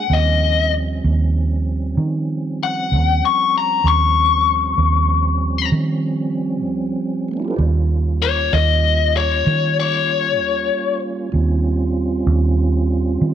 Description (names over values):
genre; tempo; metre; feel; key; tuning
slow blues; 64 BPM (dotted quarters); 12/8; straight; Eb mixolydian; A4 = 440 Hz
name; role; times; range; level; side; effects
biting lead guitar; melody; 0.0-11.0 s; Db5 to Db6; -17 LUFS; left 8 dB; overdrive
mellow tonewheel organ; sustained chords; 0.0-13.3 s; F3 to D5; -24 LUFS; right 3 dB; chorus vibrato, stopped rotary speaker
vintage muted fingered electric bass; bass; 0.1-13.3 s; Eb2 to Eb3; -18 LUFS; right 2 dB; none
room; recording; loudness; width
light reverb, digital ambience; none; -16 LUFS; side -9 dB against mid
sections
0.0-7.6 A section; 7.6-13.3 B section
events
lead electric guitar solo 7.6-13.3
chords
0.1 Eb13